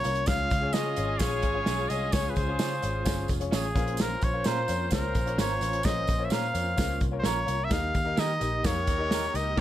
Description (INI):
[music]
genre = uptempo 1960s-style soul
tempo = 129 BPM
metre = 4/4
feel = straight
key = unclear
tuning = A4 = 441 Hz
[part]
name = bright trumpet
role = melody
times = 0.0-9.6 s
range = Ab4 to F5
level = -30 LUFS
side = equal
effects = none
[part]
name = bright upright piano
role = accompaniment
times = 0.0-9.6 s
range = Bb2 to F5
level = -36 LUFS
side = left 7 dB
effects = none
[part]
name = mellow tonewheel organ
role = sustained chords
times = 0.0-9.6 s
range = Ab3 to G4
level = -40 LUFS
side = right 2 dB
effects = slow rotary speaker, chorus vibrato
[part]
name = warm soul drum kit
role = drums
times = 0.0-9.6 s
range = crash cymbal, hi-hat, kick drum, snare drum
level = -29 LUFS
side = equal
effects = none
[part]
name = tambourine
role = percussion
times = 0.0-9.5 s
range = none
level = -42 LUFS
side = right 10 dB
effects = none
[part]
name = vintage muted picked electric bass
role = bass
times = 0.1-9.6 s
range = F1 to Eb3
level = -32 LUFS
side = equal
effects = none
[part]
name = clear saxophone section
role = second line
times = 0.3-9.6 s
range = Db4 to C5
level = -36 LUFS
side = left 2 dB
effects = none
[part]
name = electric guitar through a small old amp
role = stabs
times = 0.7-9.6 s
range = Bb3 to Db5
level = -38 LUFS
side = right 11 dB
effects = spring reverb
[sound]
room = light reverb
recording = none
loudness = -25 LUFS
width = side -12 dB against mid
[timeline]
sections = 0.0-9.6 A section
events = none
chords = 0.3 Db; 3.8 Bbm; 7.7 Eb